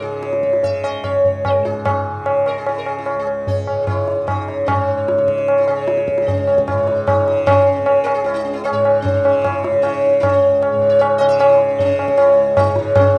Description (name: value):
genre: indian classical, Hindustani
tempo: 151 BPM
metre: 7/4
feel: straight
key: unclear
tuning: A4 = 444 Hz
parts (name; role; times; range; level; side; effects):
- sitar; melody; 0.0-13.2 s; C#4 to E5; -18 LUFS; equal; none
- tanpura; drone; 0.0-13.2 s; C#2 to C#3; -29 LUFS; equal; none
- tabla; percussion; 0.0-13.1 s; none; -22 LUFS; equal; none
room: moderate lush hall reverb, RT60 2.8 s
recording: rough home demo mix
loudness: -16 LUFS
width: mono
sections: 0.0-4.7 A section; 4.7-13.2 B section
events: speeding up 0.0-13.2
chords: none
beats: 0.22 0.63 1.04 1.44 | 1.85 2.25 2.66 3.06 3.47 3.87 4.27 | 4.67 5.07 5.47 5.87 6.27 6.67 7.07 | 7.47 7.86 8.26 8.65 9.05 9.44 9.83 | 10.23 10.62 11.01 11.40 11.79 12.18 12.57 | 12.96